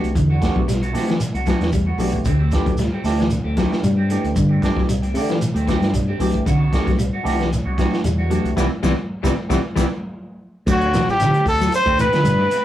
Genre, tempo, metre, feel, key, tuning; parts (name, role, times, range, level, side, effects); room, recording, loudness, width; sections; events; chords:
afrobeat; 114 BPM; 4/4; swing 54% on 16ths; D mixolydian; A4 = 440 Hz
barky tine electric piano; accompaniment; 0.0-9.8 s; E3 to G4; -25 LUFS; right 2 dB; phaser
semi-hollow electric guitar; arpeggios; 0.0-12.4 s; C3 to G3; -22 LUFS; left 1 dB
electric guitar at the edge of break-up; stabs; 0.0-12.6 s; E3 to G4; -29 LUFS; right 2 dB; phaser
fingered electric bass; bass; 0.0-12.5 s; A1 to D3; -22 LUFS; equal
crunchy breakbeat drum kit; drums; 0.0-12.6 s; crash cymbal, hi-hat, kick drum, snare drum; -23 LUFS; equal
shekere; percussion; 0.2-12.6 s; -27 LUFS; right 2 dB
clear trumpet; melody; 10.7-12.6 s; F#4 to C5; -17 LUFS; equal
growling alto saxophone; second line; 10.7-12.6 s; F#4 to C5; -28 LUFS; right 1 dB
moderate small room reverb, RT60 0.5 s; rough rehearsal-room recording; -16 LUFS; side -12 dB against mid
0.0-10.7 A section; 10.7-12.6 B section
band accent 8.6-10.7; tine electric piano fill 9.1-10.7; drum fill 9.6-10.7
0.0 Cmaj9#11; 2.3 D9sus4; 6.5 Cmaj9#11; 10.7 D9sus4